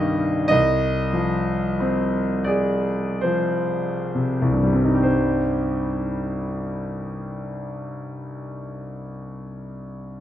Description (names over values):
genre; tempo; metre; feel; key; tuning
classical, romantic nocturne for solo piano; 30-51 BPM; 3/4; rubato; C minor; A4 = 439 Hz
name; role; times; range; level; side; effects
bright concert grand piano; solo; 0.0-10.2 s; C2 to F5; -21 LUFS; equal; none
room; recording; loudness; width
moderate recital hall reverb, RT60 1.7 s; close, detailed microphones; -20 LUFS; side -11 dB against mid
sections
0.0-5.0 A section; 5.0-10.1 B section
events
slowing down 0.0-5.0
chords
0.5 Fm/C; 5.0 Cm